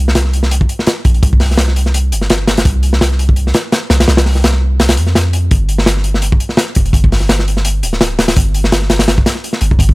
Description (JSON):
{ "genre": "drum and bass, jungle", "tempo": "168 BPM", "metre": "4/4", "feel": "swing 54% on 16ths", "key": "unclear", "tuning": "A4 = 440 Hz", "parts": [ { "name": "long sustained 808-style bass", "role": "bass", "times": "0.0-9.9 s", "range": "D1 to F2", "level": "-13 LUFS", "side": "equal", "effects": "none" }, { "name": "crunchy breakbeat drum kit", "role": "drums", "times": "0.1-9.9 s", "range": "hi-hat, kick drum, snare drum", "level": "-12 LUFS", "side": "equal", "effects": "none" } ], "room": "little or no reverb", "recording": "none", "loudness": "-10 LUFS", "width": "side -22 dB against mid", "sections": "0.0-9.9 A section", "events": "none", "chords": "none", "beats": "0.15 0.51 0.87 | 1.23 1.58 1.94 2.30 | 2.65 3.01 3.37 3.73 | 4.08 4.44 4.80 5.15 | 5.51 5.87 6.22 6.58 | 6.94 7.30 7.65 8.01 | 8.37 8.72 9.08 9.44 | 9.80" }